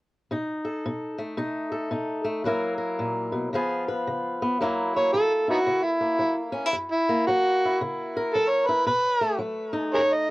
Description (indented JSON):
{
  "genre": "acoustic country blues, solo or duo",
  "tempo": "112 BPM",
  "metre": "4/4",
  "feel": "swing 62% on 8ths",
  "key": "F# mixolydian",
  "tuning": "A4 = 440 Hz",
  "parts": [
    { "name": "fingerpicked swing-style acoustic guitar", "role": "accompaniment", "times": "0.3-10.3 s", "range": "F#2 to B4", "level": "-27 LUFS", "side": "left 1 dB", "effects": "none" },
    { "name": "overdriven harmonica", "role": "melody", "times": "5.0-10.3 s", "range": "B3 to D#5", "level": "-22 LUFS", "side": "equal", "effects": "none" }
  ],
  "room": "moderate booth ambience, RT60 0.3 s",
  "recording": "worn, warbling old tape, cassette tape, warbly pitch drift",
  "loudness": "-23 LUFS",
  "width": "side -20 dB against mid",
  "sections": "0.3-4.6 A section; 4.6-10.3 B section",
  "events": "harmonica solo 4.6-10.3",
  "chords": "0.3 B7; 2.5 F#7; 3.5 C#7; 4.6 F#7; 8.9 B7",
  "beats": "| 0.31 0.85 1.39 1.92 | 2.46 2.99 3.53 4.06 | 4.60 5.13 5.67 6.20 | 6.73 7.27 7.80 8.34 | 8.87 9.40 9.94"
}